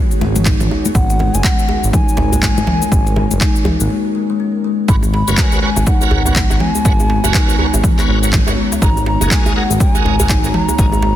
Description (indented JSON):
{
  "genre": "afro house",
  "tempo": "122 BPM",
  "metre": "4/4",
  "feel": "swing 60% on 16ths",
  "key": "G# minor",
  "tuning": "A4 = 442 Hz",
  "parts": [
    { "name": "ethereal airy pad", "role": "sustained chords", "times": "0.0-11.2 s", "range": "G#3 to A#5", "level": "-26 LUFS", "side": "right 4 dB", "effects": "ensemble chorus, built-in reverb, sidechain pumping" },
    { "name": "kalimba", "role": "arpeggios", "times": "0.0-11.2 s", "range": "D#3 to D#4", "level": "-21 LUFS", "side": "left 4 dB", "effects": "sidechain pumping, tape echo" },
    { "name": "afro-pop drum kit", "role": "drums", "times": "0.1-11.0 s", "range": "handclaps, shaker, toms", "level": "-20 LUFS", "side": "left 2 dB", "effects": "small room ambience" },
    { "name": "congas", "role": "percussion", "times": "0.1-3.8 s", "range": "none", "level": "-23 LUFS", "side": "left 4 dB", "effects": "none" },
    { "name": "smooth synth bass", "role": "bass", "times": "0.2-11.1 s", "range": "F#1 to G#1", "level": "-18 LUFS", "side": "equal", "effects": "sidechain pumping" },
    { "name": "djembe", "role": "percussion", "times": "0.2-11.1 s", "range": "none", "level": "-23 LUFS", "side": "right 2 dB", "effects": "none" },
    { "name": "electronic kick drum", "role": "drums", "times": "0.5-10.9 s", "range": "none", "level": "-15 LUFS", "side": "equal", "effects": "overdrive, small room ambience" },
    { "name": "bass bansuri", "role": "melody", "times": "0.9-11.2 s", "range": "F#5 to B5", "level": "-23 LUFS", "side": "equal", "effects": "tape echo" },
    { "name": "bright tonewheel organ", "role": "stabs", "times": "4.9-10.9 s", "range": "F#4 to C#5", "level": "-23 LUFS", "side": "right 3 dB", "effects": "chorus vibrato, slow rotary speaker, sidechain pumping, tape echo" }
  ],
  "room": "studio reverb",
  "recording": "dense, heavily limited modern master",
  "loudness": "-12 LUFS",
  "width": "side -12 dB against mid",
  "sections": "0.0-4.9 A section; 4.9-11.2 B section",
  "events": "break 3.9-4.9; drop 4.9-11.2",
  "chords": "0.0 G#m11; 0.9 F#add9; 4.9 G#m11; 8.8 F#add9"
}